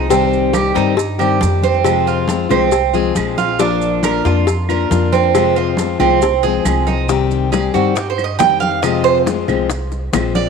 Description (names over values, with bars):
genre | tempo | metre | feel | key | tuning
latin, Cuban son and guajira | 138 BPM | 4/4 | straight | C minor | A4 = 440 Hz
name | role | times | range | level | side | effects
fingerpicked plugged-in steel-string acoustic guitar | accompaniment | 0.0-10.5 s | C3 to G4 | -18 LUFS | left 10 dB | none
Cuban tres | arpeggios | 0.0-10.5 s | C4 to G5 | -17 LUFS | right 11 dB | slapback echo
upright bass | bass | 0.0-10.5 s | Bb1 to G2 | -21 LUFS | equal | none
congas | percussion | 0.1-10.5 s | none | -24 LUFS | equal | none
cowbell and bongos | percussion | 0.1-10.5 s | none | -22 LUFS | left 8 dB | none
maracas | percussion | 0.1-10.5 s | none | -32 LUFS | right 14 dB | none
claves | percussion | 0.5-10.4 s | none | -30 LUFS | right 12 dB | none
room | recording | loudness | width
moderate plate reverb, RT60 2.9 s | 1960s-style stereo with parts hard left and right | -13 LUFS | side -5 dB against mid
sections
0.0-7.1 A section; 7.1-10.5 B section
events
Cuban tres solo 7.1-10.5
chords
0.1 Cm; 1.9 Fm; 3.6 Bb; 5.3 Fm; 7.1 Cm; 8.8 Fm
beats
| 0.10 0.54 0.98 1.42 | 1.85 2.29 2.73 3.16 | 3.60 4.03 4.47 4.91 | 5.34 5.78 6.22 6.65 | 7.09 7.53 7.96 8.40 | 8.83 9.27 9.71 10.14